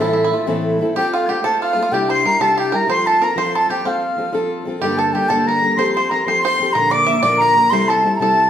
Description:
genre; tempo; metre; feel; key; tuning
celtic folk, Celtic slide; 124 BPM (dotted quarters); 12/8; straight; unclear; A4 = 440 Hz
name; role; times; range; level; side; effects
bright baroque flute; melody; 0.0-8.5 s; E5 to D6; -17 LUFS; right 1 dB; none
bluegrass banjo; second line; 0.0-8.5 s; E4 to E5; -24 LUFS; right 4 dB; none
breathy mellow tin whistle; second line; 0.0-8.5 s; E6 to D7; -22 LUFS; left 3 dB; none
fingerpicked steel-string acoustic guitar; accompaniment; 0.0-8.5 s; G2 to Bb4; -20 LUFS; left 1 dB; none
room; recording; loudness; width
wet large studio reverb, RT60 1.1 s; band playing live in one room; -14 LUFS; side -10 dB against mid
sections
0.0-8.5 A section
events
none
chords
0.0 Am; 1.0 F/A; 1.9 Cadd9; 2.9 F; 4.8 Gmadd9; 5.8 Fadd9; 6.8 Bb; 7.7 Am7/C

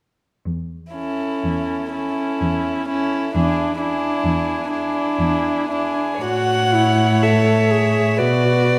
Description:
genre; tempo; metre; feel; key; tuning
classical, slow romantic movement for string quartet; 55-68 BPM; 3/4; rubato; A major; A4 = 441 Hz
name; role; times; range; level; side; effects
dark cello; bass; 0.5-8.8 s; E2 to B2; -24 LUFS; equal; none
rich violin; second line; 0.9-8.8 s; E4 to C#5; -27 LUFS; equal; none
rich violin; melody; 1.0-8.8 s; G#4 to F#5; -26 LUFS; equal; none
warm viola; accompaniment; 1.0-8.8 s; C#4 to A4; -24 LUFS; equal; none
room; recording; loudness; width
moderate concert hall reverb, RT60 2.2 s; none; -20 LUFS; mono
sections
0.4-6.2 A section; 6.2-8.8 B section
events
none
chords
0.4 A/E; 3.3 E7; 6.2 A

